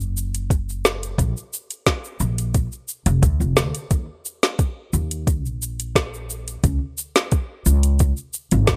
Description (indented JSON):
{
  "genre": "sunset chillout",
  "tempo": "88 BPM",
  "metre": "4/4",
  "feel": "straight",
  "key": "Eb minor",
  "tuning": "A4 = 440 Hz",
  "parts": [
    { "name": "upright bass", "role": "bass", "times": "0.0-8.8 s", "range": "F1 to Eb2", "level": "-23 LUFS", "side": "equal", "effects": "none" },
    { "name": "smooth R&B drum kit", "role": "drums", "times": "0.0-8.8 s", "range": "hi-hat, shaker, snare drum", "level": "-24 LUFS", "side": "equal", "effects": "none" },
    { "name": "electronic kick drum", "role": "drums", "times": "0.5-8.8 s", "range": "none", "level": "-22 LUFS", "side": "equal", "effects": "none" }
  ],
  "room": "digital ambience",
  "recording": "none",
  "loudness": "-22 LUFS",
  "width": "mono",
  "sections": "0.0-3.9 A section; 3.9-8.8 A section",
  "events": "none",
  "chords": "none"
}